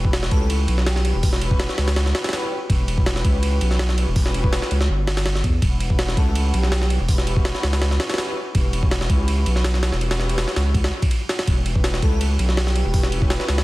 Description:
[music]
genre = drum and bass, jungle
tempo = 164 BPM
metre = 4/4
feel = straight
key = E dorian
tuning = A4 = 440 Hz
[part]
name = dark studio string section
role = sustained chords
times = 0.0-13.6 s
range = C#4 to F#5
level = -30 LUFS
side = left 1 dB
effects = none
[part]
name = saturated sub bass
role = bass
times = 0.0-13.6 s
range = E1 to E2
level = -21 LUFS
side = equal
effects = none
[part]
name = jungle sampler-style drum kit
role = drums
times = 0.0-13.6 s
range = hi-hat, kick drum, ride cymbal, snare drum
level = -21 LUFS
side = equal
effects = none
[part]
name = airy dreamy lead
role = melody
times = 0.3-1.4, 6.2-6.9, 12.0-13.1 s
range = G4 to A4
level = -32 LUFS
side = equal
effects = chorus, dub echo
[sound]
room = digital ambience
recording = dense, heavily limited modern master, vinyl crackle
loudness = -18 LUFS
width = side -19 dB against mid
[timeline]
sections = 0.0-13.6 A section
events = none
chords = 0.0 Em69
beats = 0.14 0.50 0.87 | 1.23 1.60 1.96 2.33 | 2.70 3.06 3.43 3.79 | 4.16 4.53 4.89 5.26 | 5.62 5.99 6.35 6.72 | 7.09 7.45 7.82 8.18 | 8.55 8.91 9.28 9.65 | 10.01 10.38 10.74 11.11 | 11.48 11.84 12.21 12.57 | 12.94 13.31

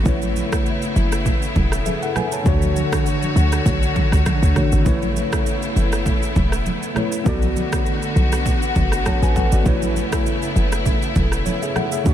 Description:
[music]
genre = afrobeats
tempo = 100 BPM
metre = 4/4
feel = swing 55% on 16ths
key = A major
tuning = A4 = 444 Hz
[part]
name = tine electric piano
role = accompaniment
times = 0.0-12.1 s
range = D3 to A5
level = -24 LUFS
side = left 1 dB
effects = overdrive, fast stereo tremolo
[part]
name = rich studio string section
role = sustained chords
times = 0.0-12.1 s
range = C#3 to C#5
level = -25 LUFS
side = left 1 dB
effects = none
[part]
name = short 808-style bass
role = bass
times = 0.0-12.1 s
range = E1 to D2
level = -19 LUFS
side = equal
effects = none
[part]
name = deep house drum kit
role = drums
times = 0.1-12.1 s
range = kick drum, rim click, shaker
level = -22 LUFS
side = equal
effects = overdrive
[part]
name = congas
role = percussion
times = 0.1-12.1 s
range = none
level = -28 LUFS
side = right 3 dB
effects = none
[sound]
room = light reverb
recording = none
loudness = -17 LUFS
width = side -10 dB against mid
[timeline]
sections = 0.0-12.1 A section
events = none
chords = 0.1 Aadd9; 2.5 Dmaj7; 4.9 Aadd9; 7.3 Bm7; 9.7 Aadd9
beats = | 0.06 0.66 1.26 1.86 | 2.46 3.06 3.66 4.26 | 4.86 5.46 6.06 6.66 | 7.26 7.86 8.46 9.06 | 9.66 10.26 10.86 11.46 | 12.06

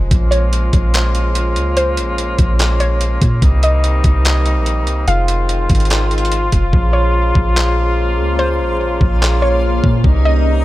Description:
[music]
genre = hip hop, atmospheric cloud-rap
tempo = 145 BPM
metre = 4/4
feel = half-time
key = Bb dorian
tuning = A4 = 441 Hz
[part]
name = mellow woodwind section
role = sustained chords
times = 0.0-10.6 s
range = C3 to F4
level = -20 LUFS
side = left 1 dB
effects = sidechain pumping
[part]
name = soft 808-style bass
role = bass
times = 0.0-10.6 s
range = F1 to Bb2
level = -15 LUFS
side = equal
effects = none
[part]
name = trip hop sampler-style drum kit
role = drums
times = 0.1-10.1 s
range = handclaps, hi-hat, kick drum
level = -17 LUFS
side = equal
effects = none
[part]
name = soft round pluck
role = melody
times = 0.3-10.6 s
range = C5 to F5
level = -22 LUFS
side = equal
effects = chorus, ping-pong delay
[part]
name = backwards swelling texture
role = texture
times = 8.0-10.6 s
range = Bb3 to C5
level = -25 LUFS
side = right 1 dB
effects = built-in reverb
[sound]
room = little or no reverb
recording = none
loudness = -12 LUFS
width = side -16 dB against mid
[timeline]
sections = 0.0-10.6 A section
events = hi-hats muted 6.7-10.6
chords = 0.1 Bbm7; 3.4 Cm7; 5.1 Fm7; 6.7 Bbm7; 10.0 Cm7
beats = | 0.11 0.53 0.94 1.35 | 1.77 2.18 2.59 3.01 | 3.42 3.84 4.25 4.66 | 5.08 5.49 5.91 6.32 | 6.73 7.15 7.56 7.97 | 8.39 8.80 9.21 9.63 | 10.04 10.46

